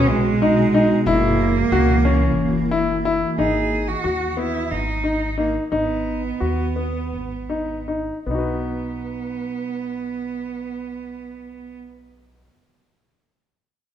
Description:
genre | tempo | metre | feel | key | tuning
contemporary instrumental, chamber music in an uneven meter | 152-186 BPM (eighths) | 7/8 | straight | B major | A4 = 440 Hz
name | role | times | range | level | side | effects
clear cello | melody | 0.0-11.8 s | G#3 to G#4 | -24 LUFS | right 5 dB | none
granular cloud pad | sustained chords | 0.0-3.4 s | B2 to F#4 | -24 LUFS | left 2 dB | built-in reverb
bright concert grand piano | arpeggios | 0.0-12.5 s | B3 to B4 | -22 LUFS | left 3 dB | none
upright bass | bass | 0.0-12.5 s | F#1 to D#2 | -26 LUFS | equal | none
room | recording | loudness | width
wet recital hall reverb, RT60 1.5 s | minimal, uncompressed stereo recording | -19 LUFS | side -10 dB against mid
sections
0.0-3.4 A section; 3.4-8.3 B section; 8.3-11.0 C section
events
slowing down 3.4-8.3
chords
0.0 G#m7/B; 1.1 F#7; 3.4 G#m; 8.3 B

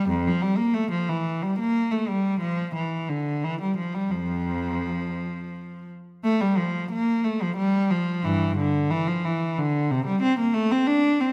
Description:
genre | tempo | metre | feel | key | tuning
classical, baroque-style suite movement for unaccompanied cello | 84-93 BPM | 3/4 | rubato | F major | A4 = 440 Hz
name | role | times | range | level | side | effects
rich cello | solo | 0.0-11.3 s | F2 to D4 | -25 LUFS | equal | none
room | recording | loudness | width
moderate recital hall reverb, RT60 1.7 s | none | -25 LUFS | mono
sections
0.0-6.2 A section; 6.2-11.3 B section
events
none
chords
none

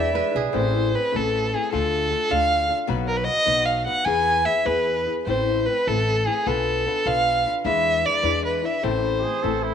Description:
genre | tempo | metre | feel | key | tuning
mexican folk, mariachi | 101 BPM (dotted quarters) | 6/8 | rubato | A harmonic minor | A4 = 438 Hz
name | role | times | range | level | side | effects
dark violin | melody | 0.0-9.7 s | G#4 to G#5 | -21 LUFS | right 1 dB | none
flamenco guitar | accompaniment | 0.0-9.7 s | A2 to B4 | -27 LUFS | left 11 dB | none
kora | arpeggios | 0.0-1.7 s | G#4 to A5 | -28 LUFS | right 9 dB | none
upright bass | bass | 0.0-9.7 s | A1 to E2 | -29 LUFS | right 1 dB | none
clear trumpet | second line | 9.2-9.7 s | E4 to A4 | -27 LUFS | right 9 dB | none
room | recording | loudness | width
moderate echo chamber reverb, RT60 2.0 s | 1960s-style stereo with parts hard left and right | -20 LUFS | side -8 dB against mid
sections
0.5-9.7 A section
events
none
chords
0.0 E7; 0.5 Amadd9; 1.7 Dm; 2.9 B; 4.1 E; 5.3 Amadd9; 6.5 Bdim; 7.6 E7; 8.8 Am

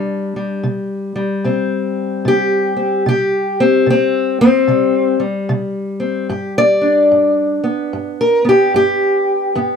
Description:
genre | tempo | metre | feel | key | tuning
acoustic country blues, solo or duo | 74 BPM | 4/4 | swing 63% on 8ths | unclear | A4 = 441 Hz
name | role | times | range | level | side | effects
fingerpicked steel-string acoustic guitar | solo | 0.0-9.8 s | G2 to D5 | -13 LUFS | left 1 dB | none
room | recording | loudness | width
light reverb | dark, warm production | -13 LUFS | side -6 dB against mid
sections
0.0-9.8 A section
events
steel-string acoustic guitar solo 0.0-9.8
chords
0.0 C5; 6.3 G

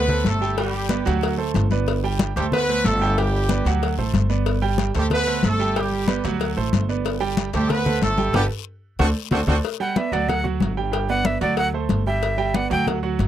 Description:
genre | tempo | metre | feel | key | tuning
latin, salsa | 186 BPM | 4/4 | straight | G major | A4 = 441 Hz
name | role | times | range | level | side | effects
brilliant horn section | melody | 0.0-9.6 s | G3 to B4 | -23 LUFS | right 1 dB | none
clear grand piano | accompaniment | 0.0-13.3 s | F#3 to G5 | -25 LUFS | right 9 dB | none
upright bass | bass | 0.0-13.3 s | G1 to D2 | -23 LUFS | equal | none
congas | percussion | 0.1-13.3 s | none | -24 LUFS | left 4 dB | none
cowbell | percussion | 0.3-13.3 s | none | -30 LUFS | left 13 dB | none
guiro | percussion | 0.3-9.5 s | none | -38 LUFS | left 21 dB | none
breathy bright jazz flute | melody | 9.8-12.9 s | D5 to G5 | -24 LUFS | equal | none
room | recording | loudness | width
little or no reverb | dry, close 1970s-style studio recording | -19 LUFS | side -11 dB against mid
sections
0.0-9.6 A section; 9.6-13.3 B section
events
drum fill 8.3-9.6; band accent 8.3-9.6; flute solo 9.6-13.3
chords
0.0 D5; 0.6 G; 1.2 D7; 1.9 Gadd9; 3.2 G; 3.8 D7; 4.5 Gadd9; 5.8 G; 6.4 D7; 7.1 Gadd9; 9.0 D7; 9.6 G; 10.3 D; 10.9 G; 11.6 D7; 12.2 G

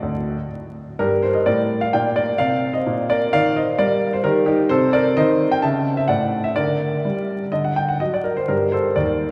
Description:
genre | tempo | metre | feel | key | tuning
classical-period piano sonatina | 128 BPM | 4/4 | rubato | G minor | A4 = 440 Hz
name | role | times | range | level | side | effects
warm grand piano | solo | 0.0-9.3 s | D2 to A5 | -20 LUFS | equal | none
room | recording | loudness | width
wet cathedral reverb, RT60 4.6 s | recorded in a church or concert hall, vinyl crackle | -20 LUFS | mono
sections
1.0-9.3 A section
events
none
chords
0.0 D; 1.0 Gm; 2.9 Gm/Bb; 4.7 Adim/C; 5.6 A/C#; 6.6 Gm/D; 7.5 D; 8.5 Gm

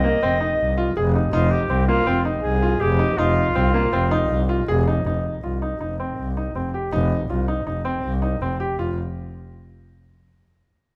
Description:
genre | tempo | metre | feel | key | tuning
contemporary instrumental, chamber music in an uneven meter | 161 BPM | 5/4 | straight | F minor | A4 = 440 Hz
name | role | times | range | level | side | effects
warm flugelhorn | melody | 0.0-4.7 s | F4 to Eb5 | -26 LUFS | equal | none
clear baby grand piano | arpeggios | 0.0-9.0 s | Bb3 to Ab4 | -26 LUFS | equal | none
rich double bass | bass | 0.0-9.0 s | F1 to C2 | -25 LUFS | equal | none
room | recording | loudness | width
light reverb | close, detailed microphones | -22 LUFS | mono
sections
0.0-5.1 A section; 5.1-8.8 B section; 8.8-10.7 C section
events
none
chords
0.0 F7(no3); 5.1 F5; 8.8 N.C.

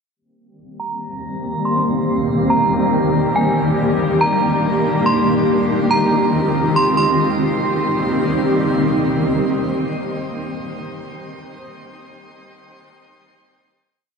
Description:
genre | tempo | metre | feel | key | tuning
hip hop, atmospheric cloud-rap | 141 BPM | 4/4 | half-time | C minor | A4 = 440 Hz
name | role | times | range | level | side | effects
granular cloud pad | sustained chords | 1.0-10.0 s | Eb3 to G4 | -17 LUFS | equal | built-in reverb, low-pass filter
metallic FM bell | melody | 0.8-8.2 s | Ab5 to C6 | -21 LUFS | right 2 dB | chorus, tremolo, low-pass filter, digital delay
room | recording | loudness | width
wet shimmer reverb, RT60 6.3 s | dark, warm production | -15 LUFS | side -5 dB against mid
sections
0.2-7.0 breakdown; 7.0-10.4 final chord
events
filter sweep 0.2-7.0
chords
0.2 Cm7; 3.6 Ebmaj7; 5.3 Fm9; 7.0 Cm7

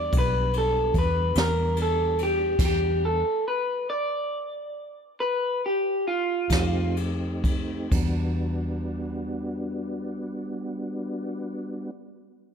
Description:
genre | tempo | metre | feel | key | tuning
slow blues | 41-49 BPM (dotted quarters) | 12/8 | straight | E minor | A4 = 440 Hz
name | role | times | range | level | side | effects
electric guitar through a small old amp | melody | 0.0-7.0 s | F4 to D5 | -25 LUFS | equal | none
mellow tonewheel organ | sustained chords | 0.0-11.9 s | G3 to F#5 | -32 LUFS | equal | chorus vibrato, slow rotary speaker
vintage muted fingered electric bass | bass | 0.0-11.9 s | B1 to F2 | -27 LUFS | equal | none
jazz brush drum kit | drums | 0.1-8.1 s | crash cymbal, kick drum, ride cymbal, snare drum | -28 LUFS | equal | none
room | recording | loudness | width
light reverb, studio ambience | none | -24 LUFS | side -7 dB against mid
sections
0.0-7.9 A section; 7.9-12.5 B section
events
clean electric guitar solo 0.0-7.9; slowing down 0.9-7.9; stop 2.6-6.5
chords
0.0 Em7; 6.5 F7; 7.9 Em7

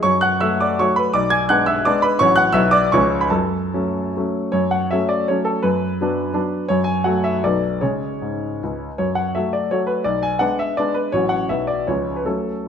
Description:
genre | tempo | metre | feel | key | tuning
classical, romantic triple-time dance for piano with dotted rhythms | 135-182 BPM | 3/4 | rubato | F# minor | A4 = 442 Hz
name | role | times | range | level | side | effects
clear grand piano | solo | 0.0-12.7 s | A1 to G#6 | -17 LUFS | equal | none
room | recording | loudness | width
moderate recital hall reverb, RT60 1.5 s | minimal, uncompressed stereo recording | -17 LUFS | side -7 dB against mid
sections
0.0-4.5 A section; 4.5-12.7 B section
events
none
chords
0.0 F#m; 1.1 G#dim/B; 2.2 F#m/A; 2.5 Bm; 2.9 C#; 3.3 F#m; 5.6 Bm/F#; 6.7 F#m; 7.4 Bm7; 7.8 C#5; 9.0 F#m; 10.1 G#dim/B; 11.1 F#m/A; 11.5 Bm; 11.9 C#

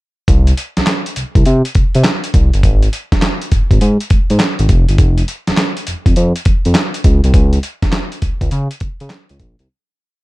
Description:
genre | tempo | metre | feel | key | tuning
R&B, new jack swing | 102 BPM | 4/4 | swing 66% on 16ths | unclear | A4 = 440 Hz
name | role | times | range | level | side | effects
smooth synth bass | bass | 0.3-9.7 s | F1 to Db3 | -13 LUFS | equal | none
dusty soul sampler-style drum kit | drums | 0.3-9.7 s | handclaps, hi-hat, kick drum, snare drum | -13 LUFS | equal | overdrive
room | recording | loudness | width
little or no reverb | dark, warm production | -11 LUFS | side -20 dB against mid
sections
0.3-9.7 verse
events
fade-out 7.3-9.7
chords
none

